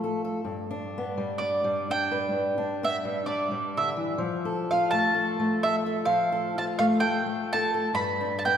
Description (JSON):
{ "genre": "acoustic folk duo or small band", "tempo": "64 BPM", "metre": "4/4", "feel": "swing 56% on 8ths", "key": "G mixolydian", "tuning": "A4 = 440 Hz", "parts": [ { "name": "fingerpicked steel-string acoustic guitar", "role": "accompaniment", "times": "0.0-8.6 s", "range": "G2 to B4", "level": "-28 LUFS", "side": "left 2 dB", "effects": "none" }, { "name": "mandolin", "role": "melody", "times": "1.4-8.6 s", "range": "D5 to B5", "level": "-26 LUFS", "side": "right 2 dB", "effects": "none" } ], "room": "wet church reverb, RT60 3.1 s", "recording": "recorded in a church or concert hall", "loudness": "-24 LUFS", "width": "side -8 dB against mid", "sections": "0.0-8.6 A section", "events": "mandolin solo 0.0-8.6", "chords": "0.4 G; 4.2 F; 7.9 G" }